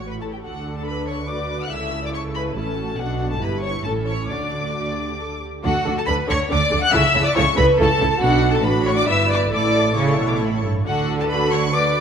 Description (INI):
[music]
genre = quick classical-period movement for string orchestra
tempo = 130-144 BPM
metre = 3/4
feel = rubato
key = D major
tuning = A4 = 441 Hz
[part]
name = muted chamber violin section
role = melody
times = 0.0-12.0 s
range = F#5 to F#6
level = -24 LUFS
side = left 3 dB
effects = none
[part]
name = muted chamber violin section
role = second line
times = 0.0-12.0 s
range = F#4 to F#5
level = -24 LUFS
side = left 2 dB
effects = none
[part]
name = muted studio viola section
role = accompaniment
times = 0.0-12.0 s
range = C#4 to B4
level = -25 LUFS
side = right 1 dB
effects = none
[part]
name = muted chamber cello section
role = bass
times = 0.0-12.0 s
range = G2 to D3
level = -26 LUFS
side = right 2 dB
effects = none
[part]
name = muted chamber double bass section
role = bass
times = 0.0-12.0 s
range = G1 to D2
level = -26 LUFS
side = right 3 dB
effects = none
[sound]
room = moderate concert hall reverb, RT60 1.8 s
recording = none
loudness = -18 LUFS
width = side -7 dB against mid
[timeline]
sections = 0.0-5.6 A section; 5.6-12.0 A section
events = none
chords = 0.4 D; 1.7 A/C#; 3.0 Bm; 3.4 Em/G; 3.8 A; 4.3 D; 5.6 D5; 6.9 A/C#; 8.2 Bm; 9.1 Em/G; 9.5 A; 10.9 D